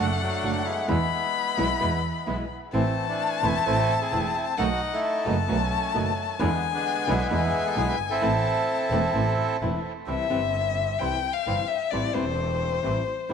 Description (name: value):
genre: tango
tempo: 131 BPM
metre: 4/4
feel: rubato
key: A harmonic minor, C major from 10.1 s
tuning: A4 = 440 Hz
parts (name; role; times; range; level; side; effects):
- bandoneon; melody; 0.0-9.6 s; D3 to A4; -28 LUFS; right 1 dB; tape echo
- warm violin; second line; 0.0-13.3 s; C5 to B5; -28 LUFS; left 9 dB; none
- flamenco guitar; accompaniment; 0.0-13.3 s; B2 to F#4; -31 LUFS; equal; none
- bandoneon; stabs; 0.0-13.3 s; G3 to G4; -38 LUFS; right 8 dB; none
- rich double bass; bass; 0.0-13.3 s; E1 to E2; -29 LUFS; right 2 dB; none
room: moderate plate reverb, RT60 2.4 s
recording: 1960s-style stereo with parts hard left and right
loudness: -23 LUFS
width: side -7 dB against mid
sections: 0.0-10.1 A section; 10.1-13.3 B section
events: violin solo 10.1-13.3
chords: 0.0 D/F#; 0.9 E; 2.7 Am; 4.6 B7; 6.4 E7; 8.2 Am; 10.1 C; 11.9 Am7